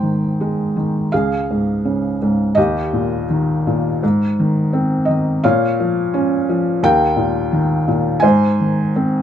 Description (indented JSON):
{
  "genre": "classical, lyrical solo piano",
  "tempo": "80-90 BPM",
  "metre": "4/4",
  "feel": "rubato",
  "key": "Ab major",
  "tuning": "A4 = 439 Hz",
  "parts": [
    { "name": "felt-muted upright piano", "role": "solo", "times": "0.0-9.2 s", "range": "Db2 to Ab5", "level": "-15 LUFS", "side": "equal", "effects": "none" }
  ],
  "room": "light reverb",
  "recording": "none",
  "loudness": "-15 LUFS",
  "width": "side -9 dB against mid",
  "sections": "0.0-9.2 A section",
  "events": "none",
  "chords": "0.0 Ab; 1.1 Db; 2.6 Eb; 4.0 Ab; 5.4 Bbm; 6.8 Eb; 8.2 Ab"
}